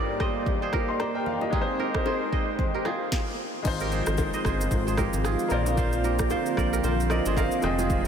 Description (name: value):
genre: afrobeats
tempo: 113 BPM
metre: 4/4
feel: swing 58% on 16ths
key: unclear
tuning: A4 = 440 Hz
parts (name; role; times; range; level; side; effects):
- clear grand piano; accompaniment; 0.0-8.1 s; F3 to C6; -32 LUFS; left 3 dB; none
- warm analog pad; sustained chords; 0.0-8.1 s; G2 to D5; -30 LUFS; right 1 dB; chorus
- kora; riff; 0.0-8.1 s; Eb4 to Eb5; -30 LUFS; right 4 dB; ping-pong delay
- afro-pop drum kit; drums; 0.2-8.1 s; crash cymbal, kick drum, rim click, shaker, snare drum; -30 LUFS; equal; none
- congas and bongos; percussion; 0.5-8.0 s; none; -37 LUFS; left 3 dB; none
- fat analog bass; bass; 3.7-8.1 s; F1 to Bb1; -28 LUFS; equal; none
room: wet huge ambient reverb, RT60 6.4 s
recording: dreamy mix soaked in reverb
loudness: -24 LUFS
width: side -8 dB against mid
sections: 0.0-3.7 A section; 3.7-8.1 B section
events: stop 3.1-3.7; grand piano fill 6.8-7.9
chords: 0.0 Ebmaj7/G; 1.5 Abmaj7; 3.7 Ab6; 5.5 Bbadd9